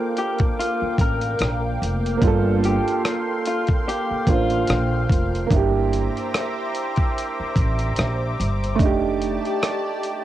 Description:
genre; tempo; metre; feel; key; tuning
lo-fi hip hop; 73 BPM; 4/4; swing 57% on 16ths; G minor; A4 = 440 Hz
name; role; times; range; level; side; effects
clear upright piano; accompaniment; 0.0-10.2 s; A3 to C5; -25 LUFS; right 6 dB; cassette tape, low-pass filter
lush unison pad; sustained chords; 0.0-10.2 s; Bb3 to D6; -28 LUFS; left 2 dB; chorus, phaser, low-pass filter
electric guitar through a small old amp; melody; 0.2-5.5 s; F4 to Bb4; -27 LUFS; left 3 dB; low-pass filter, cassette tape
dusty soul sampler-style drum kit; drums; 0.2-10.2 s; hi-hat, kick drum, rim click; -22 LUFS; equal; cassette tape
upright bass; bass; 0.8-9.4 s; F1 to Bb1; -24 LUFS; equal; tube saturation
room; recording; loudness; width
light reverb; home recording on cassette; -19 LUFS; side -13 dB against mid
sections
0.0-10.2 A section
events
none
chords
0.0 Gm7; 5.5 C9/G; 8.8 F13

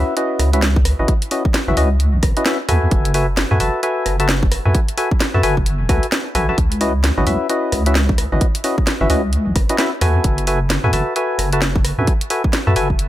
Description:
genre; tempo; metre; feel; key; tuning
UK garage, two-step garage; 131 BPM; 4/4; swing 60% on 16ths; C# minor; A4 = 440 Hz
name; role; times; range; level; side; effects
percussive organ stab; stabs; 0.0-12.9 s; C#4 to A5; -20 LUFS; left 1 dB; chorus, dub echo
deep soft wobble bass; bass; 0.0-13.1 s; E1 to F#2; -17 LUFS; equal; chorus, tube saturation
house drum kit; drums; 0.2-13.1 s; hi-hat, rim click, snare drum; -21 LUFS; equal; none
electronic kick drum; drums; 0.8-13.0 s; none; -17 LUFS; equal; none
room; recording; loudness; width
little or no reverb; none; -15 LUFS; side -14 dB against mid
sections
0.0-13.1 A section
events
none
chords
0.0 C#m11; 2.9 F#m11; 6.6 C#m11; 10.2 F#m11

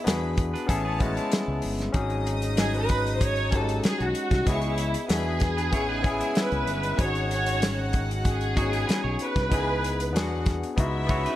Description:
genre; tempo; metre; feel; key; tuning
lush 1970s-style soul; 95 BPM; 4/4; straight; unclear; A4 = 439 Hz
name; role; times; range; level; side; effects
warm studio violin section; melody; 0.0-10.4 s; E4 to C#5; -29 LUFS; right 1 dB; none
overdriven tine electric piano; accompaniment; 0.0-11.4 s; G#3 to D#5; -30 LUFS; left 3 dB; none
clear studio string section; second line; 0.1-11.4 s; B3 to D#6; -36 LUFS; equal; none
fingered electric bass; bass; 0.1-11.3 s; G1 to E2; -29 LUFS; equal; none
warm soul drum kit; drums; 0.1-11.4 s; hi-hat, kick drum, snare drum; -26 LUFS; equal; none
clean electric guitar; riff; 0.5-11.4 s; G#3 to C#5; -35 LUFS; right 6 dB; spring reverb
warm horn section; stabs; 1.9-11.4 s; G#2 to G#4; -36 LUFS; right 1 dB; tape echo
room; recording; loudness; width
little or no reverb; none; -23 LUFS; side -13 dB against mid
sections
0.0-11.4 A section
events
none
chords
0.1 E7; 0.7 Amaj7; 1.9 G#7sus4; 4.5 C#m7; 5.1 E7; 5.7 Amaj7; 7.0 G#7sus4; 9.5 C#m7; 10.1 E7; 10.8 C#m11

